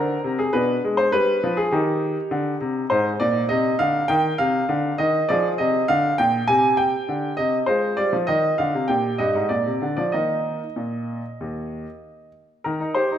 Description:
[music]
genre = classical-period piano sonatina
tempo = 100 BPM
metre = 4/4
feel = straight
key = Eb major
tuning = A4 = 442 Hz
[part]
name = bright baby grand piano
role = solo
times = 0.0-13.2 s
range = Eb2 to Ab5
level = -19 LUFS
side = equal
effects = none
[sound]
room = wet recital hall reverb, RT60 1.5 s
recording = none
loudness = -19 LUFS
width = side -10 dB against mid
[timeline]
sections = 0.0-12.7 A section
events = none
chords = 0.0 Cm; 0.5 G/B; 1.7 Cm/Eb; 2.9 Ab (rootless); 5.3 Bb7; 6.5 C5; 7.7 Fm; 8.9 Eb/Bb; 9.5 Bb; 10.1 Eb5; 12.7 Eb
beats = | 0.54 1.13 1.72 2.31 | 2.91 3.51 4.10 4.70 | 5.30 5.89 6.49 7.09 | 7.68 8.28 8.89 9.51 | 10.14 10.77 11.40 12.03 | 12.65

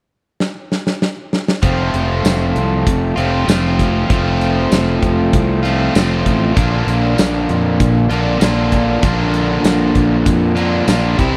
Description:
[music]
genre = classic rock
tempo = 97 BPM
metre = 4/4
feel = straight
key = F major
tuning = A4 = 440 Hz
[part]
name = big rock drum kit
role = drums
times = 0.4-11.3 s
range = hi-hat, kick drum, snare drum, tambourine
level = -20 LUFS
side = equal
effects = none
[part]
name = crunchy overdriven guitar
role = riff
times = 1.6-11.4 s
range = Bb2 to F4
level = -18 LUFS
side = equal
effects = none
[part]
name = fuzz fingered electric bass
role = bass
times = 1.6-11.4 s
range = F1 to F2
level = -20 LUFS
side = equal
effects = overdrive
[sound]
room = small room ambience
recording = dry, close 1970s-style studio recording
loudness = -15 LUFS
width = mono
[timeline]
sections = 0.0-1.6 A section; 1.6-11.4 B section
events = drum fill 0.4-1.6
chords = 0.0 N.C.; 1.6 F; 6.6 Bb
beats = 0.40 1.01 | 1.63 2.25 2.87 3.49 | 4.10 4.72 5.34 5.95 | 6.57 7.18 7.80 8.41 | 9.03 9.64 10.26 10.87

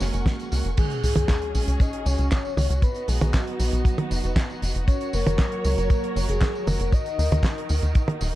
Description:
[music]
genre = italo disco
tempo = 117 BPM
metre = 4/4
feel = straight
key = F# major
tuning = A4 = 441 Hz
[part]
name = soft octave-layered synth lead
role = melody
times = 0.0-7.7 s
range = F#4 to D#5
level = -30 LUFS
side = left 2 dB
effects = chorus, phaser, digital delay
[part]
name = warm symphonic string section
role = sustained chords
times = 0.0-8.4 s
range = D#3 to C#6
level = -32 LUFS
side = right 1 dB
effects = none
[part]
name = chorused polysynth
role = stabs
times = 0.0-0.7 s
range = G#3 to F#4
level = -33 LUFS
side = right 4 dB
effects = digital delay
[part]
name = tight sequencer bass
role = bass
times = 0.0-8.3 s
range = D#1 to D#2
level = -23 LUFS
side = equal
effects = tube saturation
[part]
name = damped 70s drum kit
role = drums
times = 0.0-8.3 s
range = crash cymbal, handclaps, hi-hat, snare drum, tambourine, toms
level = -28 LUFS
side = right 1 dB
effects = none
[part]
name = kick drum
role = drums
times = 0.3-8.1 s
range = none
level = -20 LUFS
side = equal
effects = none
[part]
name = sub drop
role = sound effects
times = 0.8-2.8 s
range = none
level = -34 LUFS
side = equal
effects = none
[sound]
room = small room ambience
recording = dark, warm production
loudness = -21 LUFS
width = side -15 dB against mid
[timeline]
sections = 0.8-8.4 A section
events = impact 0.8-2.8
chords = 0.0 F#add9; 0.8 C#sus4; 2.8 B; 4.9 F#; 6.9 D#m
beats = 0.26 | 0.78 1.29 1.80 2.31 | 2.83 3.34 3.85 4.37 | 4.88 5.39 5.90 6.42 | 6.93 7.44 7.96

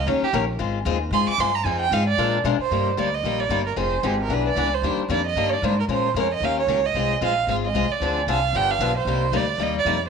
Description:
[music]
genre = acoustic string swing (jazz manouche)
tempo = 226 BPM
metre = 4/4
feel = swing 58% on 8ths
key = C minor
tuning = A4 = 436 Hz
[part]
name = warm violin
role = melody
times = 0.0-10.1 s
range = G4 to D6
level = -23 LUFS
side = right 9 dB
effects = none
[part]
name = upright bass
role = bass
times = 0.0-10.1 s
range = F1 to Cb3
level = -26 LUFS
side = equal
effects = none
[part]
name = picked steel-string acoustic guitar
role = accompaniment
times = 0.1-10.0 s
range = C3 to Bb4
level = -24 LUFS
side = left 10 dB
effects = none
[sound]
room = moderate echo chamber reverb, RT60 1.7 s, small room ambience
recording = 1960s-style stereo with parts hard left and right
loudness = -20 LUFS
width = side -6 dB against mid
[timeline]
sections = 0.0-2.7 A section; 2.7-10.1 B section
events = violin solo 0.0-2.7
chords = 0.1 Eb7; 0.6 Ab6; 1.7 Fm7; 2.2 Bb7; 2.7 Cm9; 3.8 Fm7; 4.3 E7; 4.8 Ebmaj9; 5.9 Bbm9; 6.4 Eb7; 6.9 Ab6; 8.0 Dm7b5; 8.5 G7; 9.1 Cm9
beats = 0.07 0.33 | 0.60 0.86 1.12 1.39 | 1.65 1.92 2.18 2.44 | 2.71 2.97 3.24 3.50 | 3.77 4.03 4.30 4.56 | 4.83 5.09 5.36 5.62 | 5.89 6.15 6.42 6.68 | 6.95 7.21 7.48 7.74 | 8.01 8.27 8.54 8.80 | 9.07 9.33 9.60 9.86

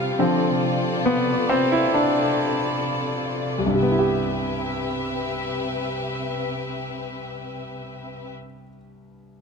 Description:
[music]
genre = pop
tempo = 64-70 BPM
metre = 4/4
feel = straight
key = C major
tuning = A4 = 440 Hz
[part]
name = bright concert grand piano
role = accompaniment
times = 0.0-9.4 s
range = C2 to G4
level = -23 LUFS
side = equal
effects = none
[part]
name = rich studio string section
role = sustained chords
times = 0.0-8.3 s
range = C3 to F5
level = -26 LUFS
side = left 2 dB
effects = none
[sound]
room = light reverb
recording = dark, warm production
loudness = -21 LUFS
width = side -5 dB against mid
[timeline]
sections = 0.0-3.8 A section; 3.8-7.6 B section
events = slowing down 0.0-3.8; grand piano solo 0.0-3.8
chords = 0.2 Dm7; 3.8 Cmaj7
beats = | 0.19 1.06 1.95 2.85 | 3.79 4.73 5.68 6.62

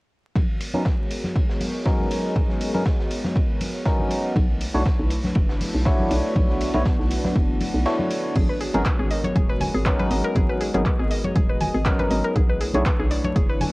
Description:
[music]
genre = deep house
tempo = 120 BPM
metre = 4/4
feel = swing 55% on 16ths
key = unclear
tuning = A4 = 440 Hz
[part]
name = airy breathy pad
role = sustained chords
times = 0.4-13.7 s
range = G#3 to D#5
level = -31 LUFS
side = equal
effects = chorus, sidechain pumping, cassette tape
[part]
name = crunchy breakbeat drum kit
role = drums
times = 0.4-8.2 s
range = hi-hat, ride cymbal, snare drum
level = -37 LUFS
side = equal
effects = sidechain pumping on cymbals, high-pass filter on cymbals, cassette tape, sidechain pumping on hats, high-pass filter on hats, high-pass filter on snare, high-pass filter on room
[part]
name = electronic kick drum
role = drums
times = 0.4-13.5 s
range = none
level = -22 LUFS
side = equal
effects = overdrive, cassette tape
[part]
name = congas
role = percussion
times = 0.4-13.7 s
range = none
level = -30 LUFS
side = left 1 dB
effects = none
[part]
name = deep dark ambient pad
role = texture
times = 1.1-13.7 s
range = B3 to D#5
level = -34 LUFS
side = equal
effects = chorus, built-in reverb, sidechain pumping, cassette tape
[part]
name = deep house drum kit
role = drums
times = 0.6-13.7 s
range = crash cymbal, handclaps, hi-hat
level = -33 LUFS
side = equal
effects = overdrive, cassette tape
[part]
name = percussive organ stab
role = stabs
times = 0.7-12.8 s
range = F#3 to C#5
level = -26 LUFS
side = equal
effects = chorus, sidechain pumping, cassette tape, analog delay
[part]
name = hollow knocking FM bass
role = bass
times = 4.4-13.7 s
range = D#1 to B1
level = -25 LUFS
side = equal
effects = sidechain pumping
[part]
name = mallet-like synth pluck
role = arpeggios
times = 8.4-13.6 s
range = G#4 to G#5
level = -28 LUFS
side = left 1 dB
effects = chorus, sidechain pumping, cassette tape, analog delay
[sound]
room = light reverb, small room ambience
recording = home recording on cassette, vinyl crackle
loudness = -20 LUFS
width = side -22 dB against mid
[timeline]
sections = 0.4-8.4 A section; 8.4-13.7 B section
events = filter sweep on synth stab 0.4-8.4; kick drops out 7.9-8.4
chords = 0.4 G#m11; 4.4 Bm11; 8.4 G#m11; 12.4 Bm11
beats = | 0.36 0.86 1.36 1.86 | 2.36 2.86 3.36 3.86 | 4.36 4.86 5.36 5.86 | 6.36 6.86 7.36 7.86 | 8.36 8.86 9.36 9.86 | 10.36 10.86 11.36 11.86 | 12.36 12.86 13.36

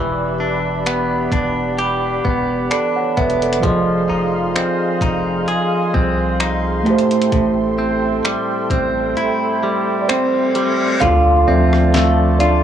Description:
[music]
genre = contemporary R&B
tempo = 65 BPM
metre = 4/4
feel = swing 54% on 16ths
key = D dorian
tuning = A4 = 439 Hz
[part]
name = mellow tine electric piano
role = accompaniment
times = 0.0-12.6 s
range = E3 to F#5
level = -19 LUFS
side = right 3 dB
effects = medium stereo tremolo
[part]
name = warm analog pad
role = sustained chords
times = 0.0-12.6 s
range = G4 to C6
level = -24 LUFS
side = right 2 dB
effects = chorus, sidechain pumping
[part]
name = direct-recorded clean electric guitar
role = arpeggios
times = 0.0-12.6 s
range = A2 to Ab4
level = -19 LUFS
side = left 2 dB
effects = spring reverb, tape echo
[part]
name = long sustained 808-style bass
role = bass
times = 0.0-12.6 s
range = E1 to D2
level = -22 LUFS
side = equal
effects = tube saturation
[part]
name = clean 12-bit digital drum machine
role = drums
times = 0.9-12.6 s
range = finger snaps, hi-hat, kick drum, rim click, snare drum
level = -21 LUFS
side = equal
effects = none
[part]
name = reverse cymbal and impact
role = sound effects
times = 9.8-12.6 s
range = none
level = -26 LUFS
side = left 1 dB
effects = none
[part]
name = soft round pluck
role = texture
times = 11.5-12.6 s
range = D5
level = -30 LUFS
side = right 9 dB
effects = none
[sound]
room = little or no reverb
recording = dry, gritty hardware recording, small room ambience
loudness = -15 LUFS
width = side -9 dB against mid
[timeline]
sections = 0.0-11.0 A section; 11.0-12.6 B section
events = kick muted 9.2-11.0; reverse cymbal 9.8-11.0; impact 11.0-12.6; tine electric piano solo 11.0-12.6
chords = 0.0 Em7; 3.6 Fm7; 6.9 Am7; 11.0 Dm7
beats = 0.86 1.78 2.71 | 3.63 4.55 5.48 6.40 | 7.32 8.25 9.17 10.09 | 11.02 11.94

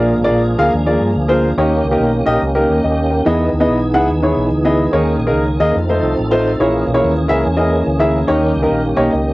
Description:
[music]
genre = gospel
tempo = 143 BPM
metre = 4/4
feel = swing 63% on 8ths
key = unclear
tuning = A4 = 439 Hz
[part]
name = warm upright piano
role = accompaniment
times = 0.0-9.3 s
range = A#2 to G5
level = -15 LUFS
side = equal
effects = cassette tape
[part]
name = mellow French horn section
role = sustained chords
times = 0.0-9.3 s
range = D#3 to D#4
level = -24 LUFS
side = equal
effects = none
[part]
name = tonewheel organ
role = sustained chords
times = 0.0-9.3 s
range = D#3 to A4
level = -21 LUFS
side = right 1 dB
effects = slow rotary speaker, overdrive, chorus vibrato, cassette tape
[part]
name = fingered electric bass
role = bass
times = 0.0-9.3 s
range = G#1 to G2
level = -19 LUFS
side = equal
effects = none
[sound]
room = moderate booth ambience, RT60 0.2 s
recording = home recording on cassette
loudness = -12 LUFS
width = side -20 dB against mid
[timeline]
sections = 0.0-9.3 A section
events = none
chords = 0.0 A#7; 1.6 D#7; 3.3 Emaj7; 4.9 D#7sus4; 5.8 F7; 6.6 A#m7b5; 8.3 D#7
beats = 0.32 0.74 1.16 | 1.58 2.00 2.42 2.84 | 3.26 3.68 4.10 4.52 | 4.94 5.36 5.78 6.20 | 6.62 7.03 7.45 7.87 | 8.29 8.71 9.13

